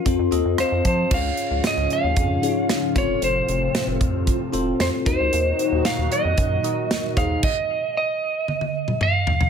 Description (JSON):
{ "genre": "1980s-style pop", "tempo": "114 BPM", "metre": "4/4", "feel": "straight", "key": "unclear", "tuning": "A4 = 443 Hz", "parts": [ { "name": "lightly driven lead guitar", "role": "melody", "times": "0.0-9.5 s", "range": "F4 to F5", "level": "-23 LUFS", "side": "right 1 dB", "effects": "none" }, { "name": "bell-like tine electric piano", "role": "accompaniment", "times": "0.0-7.4 s", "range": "C4 to A5", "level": "-26 LUFS", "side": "left 5 dB", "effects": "phaser" }, { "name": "rubbery square bass", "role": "bass", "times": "0.1-7.4 s", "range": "F1 to F3", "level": "-25 LUFS", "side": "equal", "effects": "none" }, { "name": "modern studio drum kit", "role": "drums", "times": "0.1-9.5 s", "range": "crash cymbal, hi-hat, kick drum, rim click, snare drum, toms", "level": "-24 LUFS", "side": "right 1 dB", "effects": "none" }, { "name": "phased analog pad", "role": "sustained chords", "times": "1.1-7.4 s", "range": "Ab2 to Ab4", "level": "-28 LUFS", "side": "equal", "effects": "phaser, chorus" } ], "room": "light reverb, small room ambience", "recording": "none", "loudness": "-19 LUFS", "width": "side -7 dB against mid", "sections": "0.0-1.1 A section; 1.1-9.5 B section", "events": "tine electric piano fill 0.3-1.1; drum fill 8.5-9.5", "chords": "0.1 F; 1.1 Db; 3.0 F; 5.1 Ebm; 7.2 Ab/Eb" }